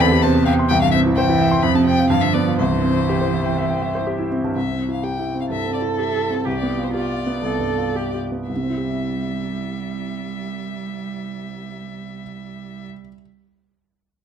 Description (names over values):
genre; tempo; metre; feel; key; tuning
quick classical-period movement for piano trio; 108-130 BPM; 4/4; rubato; C major; A4 = 440 Hz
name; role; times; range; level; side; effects
rich violin; melody; 0.0-12.9 s; A4 to B5; -26 LUFS; left 7 dB; none
rich cello; second line; 0.0-12.9 s; C3 to A4; -25 LUFS; right 6 dB; none
warm concert grand piano; accompaniment; 0.0-13.2 s; C2 to C6; -20 LUFS; equal; none
room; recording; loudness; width
wet large studio reverb, RT60 1.2 s; none; -18 LUFS; side -8 dB against mid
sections
0.0-4.6 A section; 4.6-8.5 B section; 8.5-12.7 C section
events
slowing down 3.6-8.5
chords
0.0 C/E; 0.7 C; 1.6 F5; 2.1 G7; 2.6 C; 6.5 G7/C; 8.5 C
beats
0.24 | 0.71 1.17 1.64 2.11 | 2.59 3.09 3.58 4.07 | 4.55 5.03 5.50 5.98 | 6.46 6.93 7.43 7.95 | 8.49 9.03 9.55 10.08 | 10.61 11.13 11.67 12.20